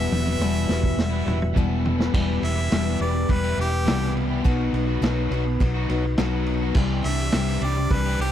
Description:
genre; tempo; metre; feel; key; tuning
folk rock and heartland rock; 104 BPM; 4/4; straight; E minor; A4 = 440 Hz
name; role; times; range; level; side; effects
bright harmonica; melody; 0.0-8.3 s; G4 to E5; -28 LUFS; right 1 dB; none
picked steel-string acoustic guitar; accompaniment; 0.0-8.3 s; E2 to G4; -27 LUFS; left 9 dB; none
tonewheel organ; sustained chords; 0.0-8.3 s; G3 to C6; -39 LUFS; right 1 dB; slow rotary speaker, overdrive, chorus vibrato
crunchy overdriven guitar; riff; 0.0-8.3 s; E2 to G4; -30 LUFS; right 3 dB; none
hollow-body short-scale fingered electric bass; bass; 0.0-8.3 s; E1 to C2; -25 LUFS; right 1 dB; none
vintage drum kit; drums; 0.1-8.3 s; crash cymbal, kick drum, ride cymbal, snare drum, toms; -26 LUFS; right 1 dB; none
room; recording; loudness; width
studio ambience; dry, close 1970s-style studio recording; -20 LUFS; side -10 dB against mid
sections
0.0-2.1 A section; 2.1-8.3 B section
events
drum fill 0.0-2.1; harmonica solo 2.1-8.3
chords
0.0 Emadd9; 2.1 Em; 4.4 B; 6.8 Cadd9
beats
0.41 0.99 1.56 | 2.14 2.72 3.29 3.87 | 4.45 5.03 5.60 6.18 | 6.75 7.33 7.91

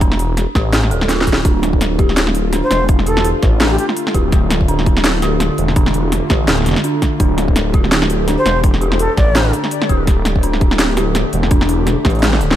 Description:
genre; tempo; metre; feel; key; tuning
half-time drum and bass; 167 BPM; 4/4; swing 57% on 16ths, half-time; D minor; A4 = 440 Hz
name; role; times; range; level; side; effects
dark detuned synth bell; arpeggios; 0.0-12.6 s; D4 to A4; -23 LUFS; right 1 dB; chorus, phaser, vintage 12-bit sampler grit, dub echo
phased detuned saw bass; bass; 0.0-12.6 s; D1 to A1; -17 LUFS; equal; phaser
drum and bass drum kit; drums; 0.0-12.6 s; hi-hat, snare drum, toms; -18 LUFS; equal; none
electronic kick drum; drums; 0.0-12.1 s; none; -14 LUFS; equal; none
bowed-like drone; sustained chords; 2.3-12.6 s; D3 to G4; -22 LUFS; equal; built-in reverb, sidechain pumping
breathy mellow silver concert flute; melody; 2.6-3.9, 8.4-9.5 s; G4 to D5; -20 LUFS; left 1 dB; ping-pong delay
room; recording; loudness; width
little or no reverb; none; -12 LUFS; side -12 dB against mid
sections
0.0-12.6 A section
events
drum fill 1.1-1.5, 12.2-12.6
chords
0.0 Dm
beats
| 0.01 0.37 0.73 1.09 | 1.45 1.81 2.17 2.53 | 2.89 3.25 3.61 3.97 | 4.33 4.68 5.04 5.40 | 5.76 6.12 6.48 6.84 | 7.20 7.56 7.92 8.28 | 8.64 9.00 9.36 9.71 | 10.07 10.43 10.79 11.15 | 11.51 11.87 12.23

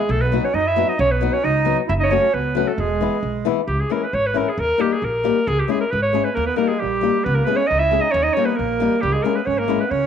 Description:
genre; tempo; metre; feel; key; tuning
balkan folk, Balkan wedding band; 134 BPM; 2/4; straight; E major, C# dorian sharp4 from 3.7 s; A4 = 440 Hz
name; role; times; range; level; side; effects
bright clarinet; melody; 0.0-10.1 s; G4 to E5; -20 LUFS; right 1 dB; none
accordion; second line; 0.0-3.5, 6.3-10.1 s; G3 to E4; -25 LUFS; right 9 dB; none
flamenco guitar; accompaniment; 0.0-9.8 s; E3 to G#4; -23 LUFS; left 10 dB; none
upright bass; bass; 0.1-10.0 s; E1 to F#2; -24 LUFS; right 1 dB; tube saturation
room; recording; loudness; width
wet spring reverb, RT60 1.1 s, small room ambience; 1960s-style stereo with parts hard left and right; -17 LUFS; side -8 dB against mid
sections
0.0-3.7 A section; 3.7-10.1 B section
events
none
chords
0.1 B; 1.9 F#m; 2.8 E; 3.7 C#m; 4.6 D#; 5.5 C#m; 6.4 D#; 7.3 C#m; 8.1 D#; 9.0 C#m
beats
| 0.10 0.54 | 0.99 1.44 | 1.89 2.34 | 2.79 3.23 | 3.68 4.13 | 4.58 5.03 | 5.47 5.92 | 6.36 6.81 | 7.25 7.70 | 8.14 8.59 | 9.03 9.48 | 9.92

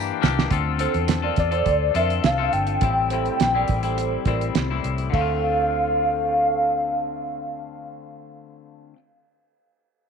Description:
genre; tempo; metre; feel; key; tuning
indie pop, bedroom pop; 104 BPM; 4/4; straight; D minor; A4 = 441 Hz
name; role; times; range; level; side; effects
twangy electric guitar; accompaniment; 0.0-9.0 s; A2 to A4; -28 LUFS; left 12 dB; wide subtle chorus, vibrato effect
vintage muted fingered electric bass; bass; 0.0-8.9 s; G1 to G2; -26 LUFS; equal; none
cloth-damped thuddy drum kit; drums; 0.2-5.3 s; hi-hat, kick drum, ride cymbal, snare drum; -24 LUFS; right 4 dB; none
vibraphone with soft mallets; second line; 0.8-6.8 s; A4 to D5; -30 LUFS; right 10 dB; wide subtle chorus, tape echo
warbly nostalgic lead; melody; 1.4-8.2 s; D5 to G5; -23 LUFS; equal; tremolo, ensemble chorus, tape echo
room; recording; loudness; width
moderate plate reverb, RT60 1.6 s, small room ambience; 1960s-style stereo with parts hard left and right; -20 LUFS; side -6 dB against mid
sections
0.5-5.1 A section; 5.1-7.5 B section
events
drum fill 0.0-0.5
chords
0.0 Em7b5; 0.5 Dm7; 2.8 Am7; 5.1 Dm7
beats
| 0.51 1.09 1.67 2.25 | 2.82 3.40 3.98 4.56 | 5.14 5.71 6.29 6.87

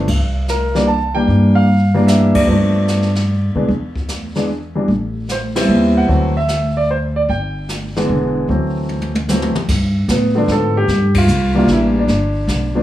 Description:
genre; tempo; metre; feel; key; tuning
jazz piano trio; 150 BPM; 3/4; swing 67% on 8ths; G mixolydian; A4 = 444 Hz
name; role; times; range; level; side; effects
warm concert grand piano; melody; 0.0-12.8 s; D3 to A5; -16 LUFS; equal; plate reverb
upright bass; bass; 0.0-12.8 s; E1 to B2; -17 LUFS; equal; none
jazz brush drum kit; drums; 0.1-12.8 s; brushed snare drum, crash cymbal, hi-hat, kick drum, ride cymbal, snare drum, toms; -23 LUFS; left 1 dB; none
room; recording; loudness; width
light reverb; studio reverb; -13 LUFS; side -13 dB against mid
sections
0.0-9.7 A section; 9.7-12.8 A section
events
band accent 2.3, 5.5, 11.1; drum fill 8.9-9.7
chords
0.1 C7; 2.5 G7; 3.7 N.C.; 4.9 Am7; 6.1 D7; 7.3 N.C.; 8.1 E7; 8.5 D7; 9.7 G7; 10.9 C7; 12.1 G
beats
| 0.08 0.48 0.88 | 1.28 1.68 2.08 | 2.48 2.88 3.28 | 3.68 4.08 4.49 | 4.88 5.29 5.68 | 6.08 6.49 6.88 | 7.29 7.68 8.08 | 8.48 8.88 9.28 | 9.68 10.08 10.48 | 10.88 11.28 11.68 | 12.08 12.48

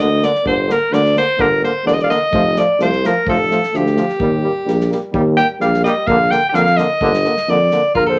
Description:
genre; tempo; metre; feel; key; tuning
balkan folk, Balkan brass band; 128 BPM; 2/4; swing 54% on 16ths; G minor; A4 = 439 Hz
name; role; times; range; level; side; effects
edgy alto saxophone; second line; 0.0-8.2 s; F4 to G5; -18 LUFS; equal; none
brilliant trombone; accompaniment; 0.0-8.2 s; D3 to G3; -26 LUFS; equal; none
mellow euphonium; accompaniment; 0.0-8.2 s; A3 to Bb3; -26 LUFS; equal; none
mellow tuba; bass; 0.0-8.2 s; E1 to F2; -21 LUFS; equal; none
unplugged drum kit; percussion; 0.2-8.1 s; kick drum, snare drum; -32 LUFS; equal; none
breathy flugelhorn; melody; 8.0-8.2 s; Bb4 to C5; -17 LUFS; equal; none
room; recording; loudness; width
wet studio reverb, RT60 0.5 s; none; -16 LUFS; mono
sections
0.0-8.0 A section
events
alto saxophone solo 0.0-8.0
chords
0.0 Gm; 2.3 F; 4.2 Eb; 6.1 Bb; 7.0 Gm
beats
| 0.46 0.93 | 1.40 1.87 | 2.33 2.80 | 3.27 3.74 | 4.21 4.67 | 5.14 5.61 | 6.08 6.55 | 7.02 7.49 | 7.95

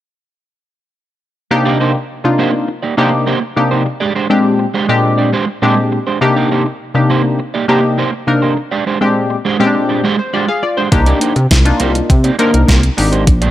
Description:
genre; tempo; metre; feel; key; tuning
early-eighties boogie funk; 102 BPM; 4/4; straight; C minor; A4 = 440 Hz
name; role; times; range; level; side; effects
funky polysynth comp; accompaniment; 1.5-13.3 s; Bb2 to F5; -14 LUFS; left 2 dB; chorus
electric guitar at the edge of break-up; riff; 1.5-13.5 s; Ab3 to D5; -18 LUFS; right 5 dB; analog chorus
chorused synth bass; bass; 10.9-13.5 s; Ab1 to C3; -13 LUFS; equal; none
crisp 8-bit digital drum machine; drums; 10.9-13.5 s; hi-hat, kick drum, snare drum; -13 LUFS; equal; overdrive, gated reverb
room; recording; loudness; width
light reverb; none; -11 LUFS; side -13 dB against mid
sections
1.5-13.5 A section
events
none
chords
1.5 Cm7; 3.9 Bb13; 6.2 Cm7; 8.6 Bb13; 10.9 Cm7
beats
| 1.51 2.10 2.69 3.27 | 3.86 4.45 5.04 5.63 | 6.21 6.80 7.39 7.98 | 8.57 9.16 9.74 10.33 | 10.92 11.51 12.10 12.69 | 13.27

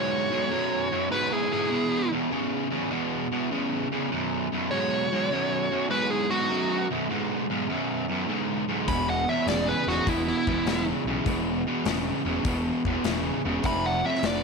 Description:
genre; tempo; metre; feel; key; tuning
blues rock power trio and southern rock; 100 BPM; 4/4; swing 67% on 8ths; B major; A4 = 439 Hz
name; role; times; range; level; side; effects
dark smooth lead guitar; melody; 0.0-14.4 s; E4 to B5; -28 LUFS; equal; overdrive
bluesy overdriven lead guitar; second line; 0.0-14.4 s; B3 to G#5; -36 LUFS; right 11 dB; distortion
distorted electric guitar; riff; 0.0-14.4 s; B1 to D3; -26 LUFS; right 1 dB; distortion
fuzz picked electric bass; bass; 8.9-14.4 s; E1 to B1; -32 LUFS; equal; overdrive
big rock drum kit; drums; 8.9-14.4 s; hi-hat, kick drum, snare drum; -32 LUFS; left 4 dB; none
room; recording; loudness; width
light reverb, studio ambience; 1960s-style stereo; -24 LUFS; side -4 dB against mid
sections
0.0-14.4 A section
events
none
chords
0.0 B5; 1.7 E5; 4.1 B5; 8.9 E5; 13.6 Fm6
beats
0.51 1.11 | 1.71 2.31 2.91 3.50 | 4.10 4.70 5.30 5.89 | 6.49 7.09 7.68 8.28 | 8.88 9.47 10.07 10.66 | 11.26 11.86 12.45 13.05 | 13.64 14.24

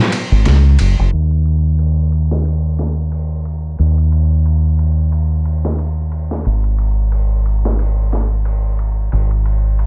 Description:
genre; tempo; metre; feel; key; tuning
trip hop; 90 BPM; 4/4; swing 56% on 16ths; unclear; A4 = 438 Hz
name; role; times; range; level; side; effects
trip hop sampler-style drum kit; drums; 0.1-9.9 s; ride cymbal, snare drum; -23 LUFS; equal; high-pass filter on cymbals, vintage 12-bit sampler grit, small room ambience, high-pass filter on snare, high-pass filter on kick
deep dub fingered electric bass; bass; 0.3-9.9 s; Gb1 to Eb2; -16 LUFS; equal; none
room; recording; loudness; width
digital ambience; vinyl crackle, low-pass filter; -16 LUFS; mono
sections
0.0-1.1 A section; 1.1-9.9 B section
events
none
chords
none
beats
0.45 | 1.12 1.79 2.45 3.12 | 3.79 4.45 5.12 5.79 | 6.45 7.12 7.79 8.45 | 9.12 9.79

